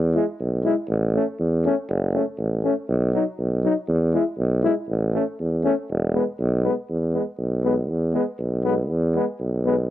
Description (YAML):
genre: balkan folk, Balkan brass band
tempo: 120 BPM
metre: 2/4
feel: straight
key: E major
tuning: A4 = 440 Hz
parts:
  - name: warm tuba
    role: bass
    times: 0.0-9.9 s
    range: E1 to E2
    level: -22 LUFS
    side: right 1 dB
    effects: none
  - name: clear euphonium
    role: accompaniment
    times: 0.2-9.8 s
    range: B3 to E4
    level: -25 LUFS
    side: left 6 dB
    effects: cassette tape
  - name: warm trombone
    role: accompaniment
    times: 0.2-9.8 s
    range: F#3 to A3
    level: -29 LUFS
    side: right 7 dB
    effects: cassette tape
room: light reverb, studio reverb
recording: home recording on cassette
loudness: -20 LUFS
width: side -13 dB against mid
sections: 0.0-6.9 A section; 6.9-9.9 B section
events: none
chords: 0.0 E; 0.9 A; 1.9 F#m; 2.9 B; 3.9 E; 4.9 A; 5.9 E